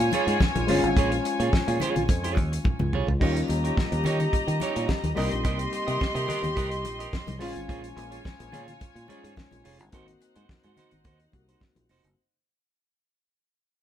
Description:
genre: disco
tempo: 107 BPM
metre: 4/4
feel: straight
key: Bb dorian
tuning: A4 = 440 Hz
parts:
  - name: dark symphonic string section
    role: second line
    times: 0.0-12.1 s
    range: Eb4 to C6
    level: -31 LUFS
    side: left 2 dB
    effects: none
  - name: barky reed electric piano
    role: accompaniment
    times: 0.0-12.2 s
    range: G3 to C5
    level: -32 LUFS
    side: left 4 dB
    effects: overdrive
  - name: clean electric guitar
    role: accompaniment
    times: 0.0-12.1 s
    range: Eb4 to Eb5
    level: -31 LUFS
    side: right 6 dB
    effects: none
  - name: fingered electric bass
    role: bass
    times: 0.0-12.1 s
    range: F1 to Eb3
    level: -29 LUFS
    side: equal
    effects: none
  - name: damped 70s drum kit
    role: drums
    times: 0.1-12.2 s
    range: hi-hat, kick drum, snare drum, splash cymbal, toms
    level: -27 LUFS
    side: equal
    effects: none
  - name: congas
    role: percussion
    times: 0.1-11.9 s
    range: none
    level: -35 LUFS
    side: left 4 dB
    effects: none
room: moderate studio reverb, RT60 0.7 s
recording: band playing live in one room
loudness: -23 LUFS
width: side -10 dB against mid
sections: 0.0-12.2 A section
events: fade-out 0.0-12.2; drum fill 2.6-3.2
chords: 0.0 Bbm7; 3.2 Eb7; 5.2 Cm7; 7.4 Bbm7; 9.9 Ab7

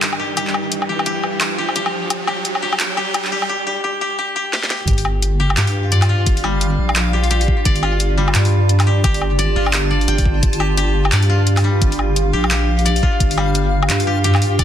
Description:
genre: half-time drum and bass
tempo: 173 BPM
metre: 4/4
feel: swing 60% on 16ths, half-time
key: unclear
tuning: A4 = 442 Hz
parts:
  - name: deep dark ambient pad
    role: sustained chords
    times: 0.0-14.6 s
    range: G3 to G5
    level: -25 LUFS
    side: right 1 dB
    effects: chorus, built-in reverb, sidechain pumping
  - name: koto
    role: arpeggios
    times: 0.0-14.6 s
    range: G3 to G5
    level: -23 LUFS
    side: left 3 dB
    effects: vintage 12-bit sampler grit, low-pass filter, tape echo
  - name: drum and bass drum kit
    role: drums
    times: 0.0-14.6 s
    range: handclaps, hi-hat, snare drum, toms, woodblock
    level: -21 LUFS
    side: left 1 dB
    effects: overdrive
  - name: riser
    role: sound effects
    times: 0.0-3.5 s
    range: none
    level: -25 LUFS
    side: right 2 dB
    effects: none
  - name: deep soft wobble bass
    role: bass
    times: 4.9-14.6 s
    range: G1 to G2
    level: -17 LUFS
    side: equal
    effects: chorus
  - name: electronic kick drum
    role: drums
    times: 4.9-14.6 s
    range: none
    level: -17 LUFS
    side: equal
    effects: none
  - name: backwards swelling texture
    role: texture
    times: 5.5-14.6 s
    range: F4 to A5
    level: -28 LUFS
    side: left 1 dB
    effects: built-in reverb
room: light reverb, digital ambience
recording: dense, heavily limited modern master, high-pass filter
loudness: -15 LUFS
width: side -10 dB against mid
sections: 0.0-4.9 A section; 4.9-14.6 B section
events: build-up 0.0-4.9; riser 0.0-3.5; drum fill 4.5-4.9; drop 4.9-14.6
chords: 0.0 G5

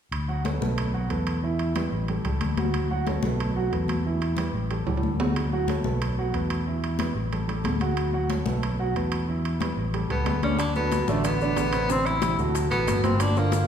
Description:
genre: Afro-Cuban jazz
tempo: 184 BPM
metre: 4/4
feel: straight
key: D major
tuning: A4 = 440 Hz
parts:
  - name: fingered electric bass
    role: bass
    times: 0.1-13.6 s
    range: G1 to E2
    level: -27 LUFS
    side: left 1 dB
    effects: none
  - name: congas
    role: percussion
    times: 0.1-13.7 s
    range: none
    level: -32 LUFS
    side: left 5 dB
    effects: none
  - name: timbales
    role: percussion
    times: 0.1-13.7 s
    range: none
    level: -34 LUFS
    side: right 3 dB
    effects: none
  - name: warm grand piano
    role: accompaniment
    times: 0.3-13.6 s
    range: Bb2 to F#5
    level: -29 LUFS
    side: right 4 dB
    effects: none
  - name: clear tenor saxophone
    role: melody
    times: 10.1-13.7 s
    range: A3 to E4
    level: -26 LUFS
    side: left 1 dB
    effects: none
  - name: bongos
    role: percussion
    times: 10.6-13.7 s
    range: none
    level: -36 LUFS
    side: left 7 dB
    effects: none
  - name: maracas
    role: percussion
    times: 10.6-13.7 s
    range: none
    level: -41 LUFS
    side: left 9 dB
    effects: none
room: wet recital hall reverb, RT60 1.6 s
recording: recorded in a church or concert hall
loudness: -23 LUFS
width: side -8 dB against mid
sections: 0.1-10.6 A section; 10.6-13.7 B section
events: drum fill 4.9-5.4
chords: 0.1 Dmaj7; 0.8 B5; 1.4 Em; 2.1 A7; 2.7 Dmaj7; 3.4 B5; 4.1 Em; 4.7 A7; 5.4 Dmaj7; 6.0 B5; 6.7 Em; 7.3 Dadd11/A; 8.0 Dmaj7; 8.6 B5; 9.3 Em; 9.9 A7; 10.6 D6; 11.9 Am7; 12.5 D

